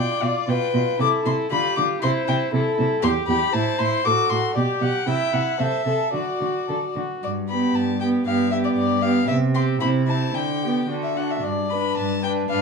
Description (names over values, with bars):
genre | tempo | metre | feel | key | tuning
quick classical-period movement for string quartet | 109-121 BPM | 2/4 | rubato | C major, G major from 3.0 s | A4 = 439 Hz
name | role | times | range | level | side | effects
warm violin | melody | 0.0-12.6 s | D5 to D6 | -25 LUFS | left 6 dB | none
warm violin | second line | 0.0-12.6 s | E4 to B4 | -28 LUFS | equal | none
rich viola | accompaniment | 0.0-12.6 s | B3 to E5 | -25 LUFS | right 1 dB | none
dark cello | bass | 0.0-12.6 s | E2 to D3 | -24 LUFS | right 2 dB | none
room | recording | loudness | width
light reverb | studio ambience | -19 LUFS | side -4 dB against mid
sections
0.0-7.2 A section; 7.2-12.6 B section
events
none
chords
0.0 G7/B; 1.0 C; 1.5 G7; 2.0 C; 3.0 Em; 3.5 Am; 4.1 F#dim/A; 4.6 G; 5.1 C; 5.6 Am; 6.1 D; 7.2 G; 9.3 C5; 10.4 G/D; 10.9 D; 11.4 G